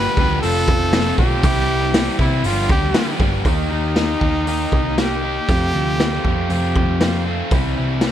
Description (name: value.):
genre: indie rock.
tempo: 118 BPM.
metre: 4/4.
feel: straight.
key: unclear.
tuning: A4 = 438 Hz.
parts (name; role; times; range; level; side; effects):
warm trumpet; melody; 0.0-7.2 s; Eb4 to B4; -23 LUFS; equal; analog delay.
overdriven electric guitar; riff; 0.0-8.1 s; F2 to G4; -22 LUFS; equal; none.
hollow-body short-scale picked electric bass; bass; 0.0-8.1 s; F1 to C3; -22 LUFS; equal; none.
raw garage drum kit; drums; 0.2-8.1 s; hi-hat, kick drum, snare drum; -20 LUFS; equal; none.
room: light reverb.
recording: none.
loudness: -16 LUFS.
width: side -10 dB against mid.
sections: 0.0-3.5 A section; 3.5-8.1 B section.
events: none.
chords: 0.4 F; 1.4 C; 2.4 G7; 3.5 Eb; 5.5 F6; 7.5 C.